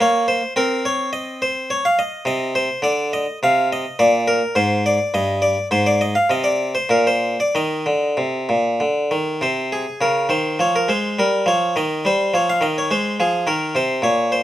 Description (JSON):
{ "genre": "classical, baroque-style suite movement for harpsichord", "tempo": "94-109 BPM", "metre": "3/4", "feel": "rubato", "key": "Eb major, Ab major from 9.4 s", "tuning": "A4 = 440 Hz", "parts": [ { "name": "harpsichord", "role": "solo", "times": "0.0-14.4 s", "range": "G2 to F5", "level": "-17 LUFS", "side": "equal", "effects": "none" } ], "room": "light reverb", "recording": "minimal, uncompressed stereo recording", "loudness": "-17 LUFS", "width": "side -13 dB against mid", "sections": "0.0-9.4 A section; 9.4-14.4 A section", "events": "none", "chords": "0.0 N.C.; 2.3 Cmadd9; 3.4 N.C.; 4.0 Abadd9; 5.1 N.C.; 5.7 Ab6; 6.9 N.C.; 7.5 Eb5; 9.4 Cm7; 10.6 Fmadd11; 11.2 Eb; 12.9 Ab" }